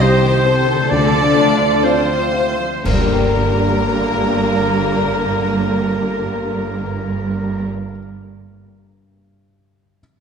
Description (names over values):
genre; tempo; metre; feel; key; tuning
cinematic, emotional film score for orchestra; 59-69 BPM; 4/4; rubato; G minor; A4 = 438 Hz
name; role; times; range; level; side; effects
clear studio violin section; melody; 0.0-7.7 s; Bb4 to D5; -23 LUFS; left 3 dB; none
clear oboe; second line; 0.0-7.7 s; Bb4 to D5; -26 LUFS; right 3 dB; none
dark clarinet; second line; 0.0-7.7 s; Bb4 to D5; -25 LUFS; right 1 dB; none
rich studio violin section; second line; 0.0-7.7 s; Bb3 to Bb4; -25 LUFS; left 2 dB; none
felt-muted upright piano; accompaniment; 0.0-10.0 s; C2 to G5; -24 LUFS; left 2 dB; none
rich studio viola section; accompaniment; 0.0-7.7 s; C3 to G4; -24 LUFS; right 4 dB; none
dark French horn section; sustained chords; 0.0-7.7 s; Bb3 to D4; -22 LUFS; left 3 dB; none
concert harp; arpeggios; 0.0-8.1 s; G2 to G5; -24 LUFS; left 4 dB; none
rich studio cello section; bass; 0.9-7.7 s; G2 to D3; -26 LUFS; right 3 dB; none
warm studio double bass section; bass; 0.9-7.7 s; G1 to D2; -23 LUFS; right 4 dB; none
clash cymbals and concert bass drum; percussion; 2.9-4.8 s; none; -23 LUFS; equal; none
room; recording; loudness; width
wet concert hall reverb, RT60 2.0 s; dark, warm production; -14 LUFS; side -6 dB against mid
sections
0.0-2.9 A section; 2.9-6.9 B section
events
slowing down 0.0-2.9; band accent 2.9-3.9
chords
0.0 Cm; 0.9 Dm; 2.9 Gm